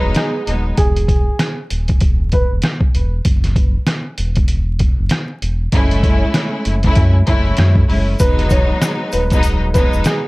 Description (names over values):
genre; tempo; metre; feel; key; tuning
hip hop, boom-bap hip-hop; 97 BPM; 4/4; swing 59% on 16ths; E major; A4 = 439 Hz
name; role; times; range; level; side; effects
dark upright piano; melody; 0.0-2.5, 8.2-10.3 s; G#4 to C#5; -22 LUFS; right 1 dB; high-pass filter, low-pass filter, digital delay
clear studio string section; accompaniment; 0.0-0.8, 5.7-10.3 s; F#3 to E4; -20 LUFS; equal; cassette tape, high-pass filter, low-pass filter
sub bass with octave; bass; 0.0-10.0 s; D#1 to F#2; -17 LUFS; equal; none
trip hop sampler-style drum kit; drums; 0.1-10.2 s; hi-hat, kick drum, rim click, snare drum; -15 LUFS; equal; none
tube shaker; percussion; 8.2-10.2 s; none; -33 LUFS; left 3 dB; none
room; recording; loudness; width
light reverb; vinyl crackle; -13 LUFS; side -22 dB against mid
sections
0.0-8.2 A section; 8.2-10.3 A section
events
none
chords
0.0 Emaj7; 3.2 F#m7; 8.2 Emaj7